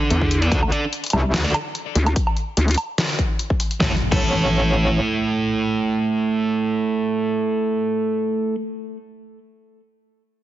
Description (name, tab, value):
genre	heavy wobble dubstep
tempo	146 BPM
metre	4/4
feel	swing 54% on 16ths, half-time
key	unclear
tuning	A4 = 440 Hz
part	sludgy distorted guitar	stabs	0.0-8.6 s	A3 to D5	-21 LUFS	right 3 dB	overdrive, ping-pong delay
part	vowel-sweep wobble bass	bass	0.1-2.8 s	D2 to E2	-17 LUFS	equal	chorus, overdrive
part	dubstep drum kit	drums	0.1-4.2 s	crash cymbal, hi-hat, snare drum, woodblock	-25 LUFS	equal	none
part	electronic kick drum	drums	0.2-4.2 s	none	-22 LUFS	left 1 dB	overdrive
part	metallic wobble bass	bass	0.5-5.0 s	A1 to D2	-20 LUFS	equal	chorus, overdrive
part	impact	sound effects	3.9-8.4 s	none	-29 LUFS	left 1 dB	none
room	moderate lush hall reverb, RT60 1.7 s, digital ambience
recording	heavily compressed radio sound, multiband compression, nothing above 7.7 kHz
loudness	-18 LUFS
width	side -13 dB against mid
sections	0.0-3.8 A section; 3.8-7.1 B section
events	drop 0.0-3.8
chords	0.0 D5; 3.8 A5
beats	0.10 | 0.52 0.93 1.34 1.75 | 2.16 2.57 2.98 3.39 | 3.80 4.21 4.62 5.04 | 5.45 5.86 6.27 6.68